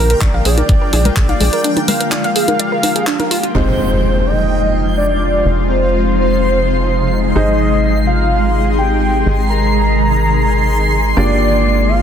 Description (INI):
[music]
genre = progressive house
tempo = 126 BPM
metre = 4/4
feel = straight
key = F dorian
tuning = A4 = 440 Hz
[part]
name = wide unison lead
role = melody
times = 0.0-12.0 s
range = Bb4 to Bb5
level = -18 LUFS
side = equal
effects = sidechain pumping, tape echo
[part]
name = shimmering ambient pad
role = sustained chords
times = 0.0-12.0 s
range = C3 to Ab4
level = -19 LUFS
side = left 2 dB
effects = chorus, built-in reverb, phaser, sidechain pumping
[part]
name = soft round pluck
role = arpeggios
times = 0.0-3.5 s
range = D4 to F5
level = -21 LUFS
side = right 1 dB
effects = analog chorus, vintage 12-bit sampler grit, sidechain pumping, tape echo
[part]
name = tight sequencer bass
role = bass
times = 0.0-12.0 s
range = F1 to Bb1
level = -16 LUFS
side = equal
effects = sidechain pumping
[part]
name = backwards swelling texture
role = texture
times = 0.0-12.0 s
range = G5 to C7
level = -24 LUFS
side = equal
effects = built-in reverb, sidechain pumping
[part]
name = house drum kit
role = drums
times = 0.1-3.5 s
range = handclaps, hi-hat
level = -20 LUFS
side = equal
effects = sidechain pumping on hats
[part]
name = electronic kick drum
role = drums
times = 0.2-1.3 s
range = none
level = -14 LUFS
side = equal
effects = none
[part]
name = congas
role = percussion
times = 0.2-3.3 s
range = none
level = -20 LUFS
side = equal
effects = sidechain pumping on perc
[part]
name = felt-muted upright piano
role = stabs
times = 3.5-12.0 s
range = Ab3 to D5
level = -22 LUFS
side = right 3 dB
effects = sidechain pumping, low-pass filter, tape echo
[part]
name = impact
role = sound effects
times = 3.5-5.5 s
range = none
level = -22 LUFS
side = equal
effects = none
[sound]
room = light reverb, digital ambience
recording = dense, heavily limited modern master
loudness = -12 LUFS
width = side -8 dB against mid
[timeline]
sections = 0.0-3.5 A section; 3.5-12.0 B section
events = break 1.6-3.5; impact 3.5-5.5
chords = 0.0 Bb7; 3.5 Fm7; 7.4 Ab; 11.2 Gm7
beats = 0.21 0.69 1.17 | 1.64 2.12 2.60 3.07 | 3.55 4.02 4.50 4.98 | 5.45 5.93 6.41 6.88 | 7.36 7.83 8.31 8.79 | 9.26 9.74 10.21 10.69 | 11.17 11.64